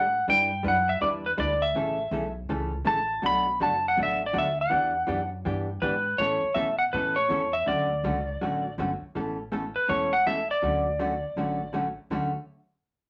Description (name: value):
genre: country, western swing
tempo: 162 BPM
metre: 4/4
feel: swing 64% on 8ths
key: D major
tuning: A4 = 440 Hz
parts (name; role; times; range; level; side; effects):
- clean lap steel guitar; melody; 0.0-11.7 s; B4 to B5; -27 LUFS; equal; none
- vintage hollow-body jazz guitar; accompaniment; 0.0-12.3 s; B2 to B4; -33 LUFS; equal; none
- upright bass; bass; 0.0-12.3 s; E1 to B2; -38 LUFS; equal; none
room: wet studio reverb, RT60 0.5 s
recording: none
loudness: -27 LUFS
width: mono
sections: 0.0-9.1 A section; 9.1-12.1 B section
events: none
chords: 0.3 Em7; 1.8 A; 3.2 Bm7; 4.7 Em7; 6.2 Aadd9; 7.7 Dmaj7; 9.1 Aadd9; 10.6 Dmaj7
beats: | 0.27 0.64 1.01 1.38 | 1.75 2.12 2.49 2.86 | 3.23 3.60 3.97 4.34 | 4.71 5.08 5.45 5.82 | 6.19 6.56 6.93 7.30 | 7.67 8.04 8.41 8.78 | 9.15 9.52 9.89 10.26 | 10.63 11.00 11.37 11.74 | 12.11